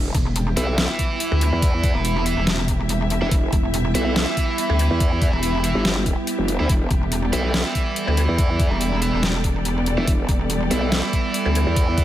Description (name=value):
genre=heavy wobble dubstep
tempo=142 BPM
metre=4/4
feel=swing 53% on 16ths, half-time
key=E minor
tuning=A4 = 442 Hz
part: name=evolving wavetable pad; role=sustained chords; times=0.4-12.0 s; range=G3 to A4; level=-28 LUFS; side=right 3 dB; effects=chorus, built-in reverb, sidechain pumping
part: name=growl bass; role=bass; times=0.0-12.0 s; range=E1 to E2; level=-22 LUFS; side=equal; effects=chorus, overdrive
part: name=impact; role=sound effects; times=0.0-1.6 s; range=none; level=-36 LUFS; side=equal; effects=none
part: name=dark symphonic string section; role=texture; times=0.0-12.0 s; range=B3 to E5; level=-30 LUFS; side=left 2 dB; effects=sidechain pumping
part: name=pulsing pluck wobble bass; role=bass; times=0.1-11.6 s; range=E1 to D2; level=-21 LUFS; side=equal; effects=chorus, overdrive
part: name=dubstep drum kit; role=drums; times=0.1-12.0 s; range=hi-hat, snare drum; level=-25 LUFS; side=left 1 dB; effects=overdrive, studio reverb
part: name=electronic kick drum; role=drums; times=0.1-12.0 s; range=none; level=-20 LUFS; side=equal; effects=overdrive, studio reverb
part: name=tight distorted guitar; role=stabs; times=0.6-12.0 s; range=E4 to E5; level=-27 LUFS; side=right 3 dB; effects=distortion, tape echo
room=digital ambience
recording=none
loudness=-18 LUFS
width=side -12 dB against mid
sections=0.0-12.0 A section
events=impact 0.0-1.6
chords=0.0 Em